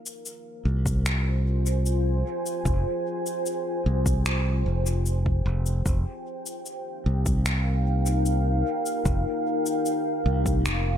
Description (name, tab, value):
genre	ambient dub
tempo	75 BPM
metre	4/4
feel	straight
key	F minor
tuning	A4 = 440 Hz
part	deep dark ambient pad	sustained chords	0.0-11.0 s	Eb4 to Ab5	-29 LUFS	equal	chorus, built-in reverb
part	electronic cabasa and finger snaps	drums	0.1-10.8 s	none	-32 LUFS	left 2 dB	overdrive
part	modern bright fingered electric bass	bass	0.7-11.0 s	F1 to C2	-23 LUFS	equal	none
part	electronic kick drum	drums	0.9-10.6 s	none	-26 LUFS	equal	none
room	light reverb, digital ambience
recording	none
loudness	-23 LUFS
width	side -9 dB against mid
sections	0.0-11.0 A section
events	none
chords	0.0 Fm9; 5.9 Eb/F